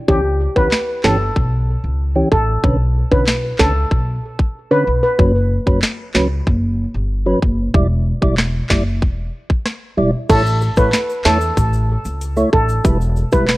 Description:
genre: dancehall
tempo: 94 BPM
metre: 4/4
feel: straight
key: unclear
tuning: A4 = 439 Hz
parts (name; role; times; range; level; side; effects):
- steel pan; melody; 0.1-5.2, 10.3-13.5 s; G4 to B4; -18 LUFS; equal; digital delay
- percussive tonewheel organ; accompaniment; 0.1-13.5 s; D3 to D5; -20 LUFS; right 1 dB; chorus vibrato, slow rotary speaker, sidechain pumping
- upright bass; bass; 0.1-13.6 s; E1 to E2; -18 LUFS; equal; none
- island pop drum kit; drums; 0.1-13.6 s; crash cymbal, handclaps, hi-hat, kick drum, rim click, snare drum; -17 LUFS; equal; none
- egg shaker; percussion; 10.3-13.6 s; none; -40 LUFS; left 6 dB; none
room: small room ambience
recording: worn, warbling old tape, cassette tape, warbly pitch drift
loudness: -14 LUFS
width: side -19 dB against mid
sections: 0.0-10.3 A section; 10.3-13.6 B section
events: none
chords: 0.1 C#dim; 2.6 Bmadd9; 5.2 F#sus4; 7.7 Em7; 10.3 A; 12.8 Em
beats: | 0.08 0.72 1.36 2.00 | 2.64 3.27 3.91 4.55 | 5.19 5.83 6.47 7.11 | 7.74 8.38 9.02 9.66 | 10.30 10.94 11.57 12.21 | 12.85 13.49

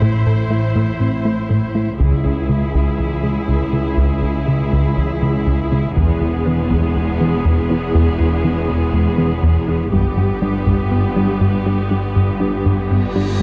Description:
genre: cinematic, hybrid orchestral and electronic film score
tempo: 121 BPM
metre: 4/4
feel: straight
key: unclear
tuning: A4 = 440 Hz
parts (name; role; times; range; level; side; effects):
- clear symphonic viola section; accompaniment; 0.0-13.4 s; B3 to C5; -26 LUFS; equal; none
- thumb-piano-like synth pluck; arpeggios; 0.0-13.4 s; C#3 to A4; -26 LUFS; equal; chorus, tape echo
- plucky analog bass; riff; 0.0-13.3 s; C#2 to A3; -20 LUFS; equal; none
- rich symphonic cello section; bass; 0.0-13.4 s; C#2 to A2; -25 LUFS; equal; none
- rich symphonic double bass section; bass; 0.0-13.4 s; E1 to C#2; -25 LUFS; equal; none
- taiko ensemble; drums; 2.0-3.0, 6.0-6.9, 9.9-10.9 s; none; -28 LUFS; equal; none
- cymbal swell; sound effects; 12.8-13.4 s; none; -37 LUFS; equal; none
room: wet recital hall reverb, RT60 1.5 s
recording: dark, warm production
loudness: -17 LUFS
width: mono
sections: 0.0-13.4 A section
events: build-up 0.0-13.4; cymbal swell 12.8-13.4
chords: 0.0 Am; 2.0 C#m; 6.0 E; 9.9 G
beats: | 0.02 0.51 1.01 1.50 | 2.00 2.50 2.99 3.49 | 3.98 4.48 4.97 5.47 | 5.97 6.46 6.96 7.45 | 7.95 8.45 8.94 9.44 | 9.93 10.43 10.93 11.42 | 11.92 12.41 12.91 13.40

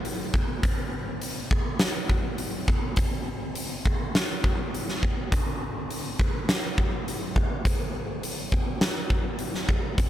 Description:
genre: rock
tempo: 103 BPM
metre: 4/4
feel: straight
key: none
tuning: none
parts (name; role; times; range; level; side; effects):
- huge arena drum kit; drums; 0.0-10.1 s; hi-hat, kick drum, snare drum; -25 LUFS; equal; none
room: little or no reverb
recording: none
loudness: -25 LUFS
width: side -12 dB against mid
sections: 0.0-10.1 A section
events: none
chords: none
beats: 0.04 | 0.63 1.22 1.80 2.39 | 2.98 3.56 4.15 4.73 | 5.32 5.90 6.48 7.07 | 7.65 8.23 8.81 9.40 | 9.98

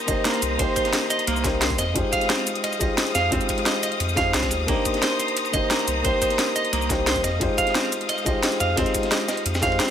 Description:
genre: liquid drum and bass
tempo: 176 BPM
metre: 4/4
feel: straight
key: unclear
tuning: A4 = 440 Hz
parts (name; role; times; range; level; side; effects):
- felt-muted upright piano; accompaniment; 0.0-9.9 s; Ab3 to C5; -26 LUFS; left 1 dB; tape echo
- clear studio string section; sustained chords; 0.0-9.9 s; Ab3 to Eb6; -29 LUFS; left 3 dB; sidechain pumping
- drum and bass drum kit; drums; 0.0-9.9 s; hi-hat, shaker, snare drum; -25 LUFS; equal; overdrive
- clean electric guitar; arpeggios; 0.1-9.9 s; Bb3 to F5; -26 LUFS; right 3 dB; tape echo
- saturated sub bass; bass; 0.1-9.8 s; G1 to F2; -27 LUFS; equal; none
- crunchy breakbeat drum kit; drums; 0.1-9.9 s; ride cymbal, snare drum; -32 LUFS; equal; high-pass filter on cymbals, high-pass filter on snare, high-pass filter on room
- electronic kick drum; drums; 0.1-9.7 s; none; -29 LUFS; equal; overdrive
room: light reverb, small room reverb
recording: none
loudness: -20 LUFS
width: side -9 dB against mid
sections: 0.0-9.9 A section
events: none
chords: 0.0 Cm7; 1.8 Fm7; 4.7 Cm7; 7.2 Fm7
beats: 0.25 | 0.59 0.93 1.27 1.61 | 1.96 2.30 2.64 2.98 | 3.32 3.66 4.00 4.34 | 4.68 5.02 5.37 5.71 | 6.05 6.39 6.73 7.07 | 7.41 7.75 8.09 8.43 | 8.77 9.12 9.46 9.80

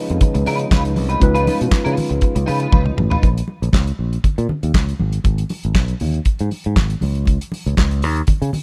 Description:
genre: disco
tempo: 119 BPM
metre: 4/4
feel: straight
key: unclear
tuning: A4 = 440 Hz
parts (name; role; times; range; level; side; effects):
- tine electric piano; accompaniment; 0.0-3.3 s; G#3 to B4; -26 LUFS; equal; none
- mellow French horn section; sustained chords; 0.0-3.2 s; C#3 to E#4; -29 LUFS; equal; none
- clean electric guitar; accompaniment; 0.1-3.3 s; D#4 to B4; -27 LUFS; equal; analog chorus
- fingered electric bass; bass; 0.1-8.5 s; G#1 to C#3; -22 LUFS; equal; none
- damped 70s drum kit; drums; 0.1-8.6 s; handclaps, hi-hat, kick drum, snare drum, toms; -20 LUFS; equal; none
- congas; percussion; 0.2-8.6 s; none; -28 LUFS; equal; none
room: little or no reverb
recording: none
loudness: -18 LUFS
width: mono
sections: 0.0-3.2 A section; 3.2-8.6 B section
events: drum fill 2.7-3.2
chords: 0.0 C#9; 3.2 A#m; 5.0 N.C.; 7.0 C#5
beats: 0.21 0.71 | 1.22 1.72 2.23 2.73 | 3.23 3.74 4.24 4.75 | 5.25 5.76 6.26 6.77 | 7.27 7.78 8.28

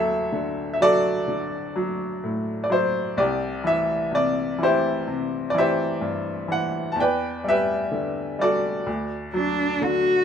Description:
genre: acoustic folk-pop ballad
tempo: 63 BPM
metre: 4/4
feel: straight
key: D mixolydian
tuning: A4 = 440 Hz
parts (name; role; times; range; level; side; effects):
- bright upright piano; melody; 0.0-10.2 s; C2 to A5; -22 LUFS; equal; none
- dark cello; second line; 9.3-10.2 s; D4 to F#4; -20 LUFS; equal; none
room: light reverb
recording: minimal, uncompressed stereo recording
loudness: -21 LUFS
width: side -8 dB against mid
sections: 0.0-10.2 A section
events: none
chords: 0.0 D; 3.2 C; 7.0 Em7; 8.9 D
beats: 0.33 1.28 2.23 | 3.17 4.12 5.07 6.02 | 6.97 7.92 8.87 9.82

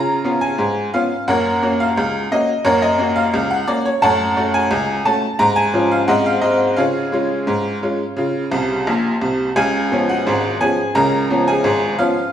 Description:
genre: ragtime piano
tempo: 87 BPM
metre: 2/4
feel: straight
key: Db major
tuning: A4 = 439 Hz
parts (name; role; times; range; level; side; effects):
- tack piano; solo; 0.0-12.3 s; Ab1 to Bb5; -15 LUFS; equal; none
room: wet large studio reverb, RT60 1.4 s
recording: band playing live in one room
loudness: -15 LUFS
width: side -10 dB against mid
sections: 0.0-9.6 A section; 9.6-12.3 A section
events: honky-tonk piano fill 8.5-9.6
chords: 0.0 Db7; 1.3 Gb; 4.0 Gbm; 5.4 Db/Ab; 6.1 Ab7; 6.8 Db; 9.6 Db7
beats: 0.59 | 1.27 1.96 | 2.65 3.33 | 4.02 4.71 | 5.39 6.08 | 6.78 7.48 | 8.18 8.88 | 9.58 10.27 | 10.96 11.64

